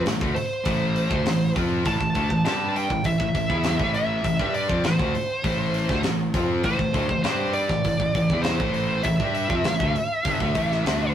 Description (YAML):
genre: hard rock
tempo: 100 BPM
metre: 4/4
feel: straight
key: A minor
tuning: A4 = 440 Hz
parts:
  - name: cranked stack guitar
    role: riff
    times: 0.0-11.1 s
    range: G2 to G4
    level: -28 LUFS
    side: left 4 dB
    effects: overdrive
  - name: distorted electric guitar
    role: riff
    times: 0.0-11.1 s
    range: G2 to G4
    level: -31 LUFS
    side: right 5 dB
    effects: overdrive
  - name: fuzz fingered electric bass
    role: bass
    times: 0.0-11.1 s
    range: G1 to G2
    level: -26 LUFS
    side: equal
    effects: overdrive
  - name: tight metal drum kit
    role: drums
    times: 0.1-11.0 s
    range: hi-hat, kick drum, snare drum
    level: -27 LUFS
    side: equal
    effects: none
  - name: high-gain lead guitar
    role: melody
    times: 0.3-11.1 s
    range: C5 to A5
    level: -26 LUFS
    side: right 1 dB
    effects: distortion
room: light reverb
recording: rough rehearsal-room recording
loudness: -21 LUFS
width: side -10 dB against mid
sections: 0.0-11.1 A section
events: none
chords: 0.0 Am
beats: 0.06 0.65 1.25 | 1.85 2.45 3.05 3.65 | 4.25 4.85 5.45 6.05 | 6.65 7.25 7.85 8.45 | 9.05 9.65 10.24 10.85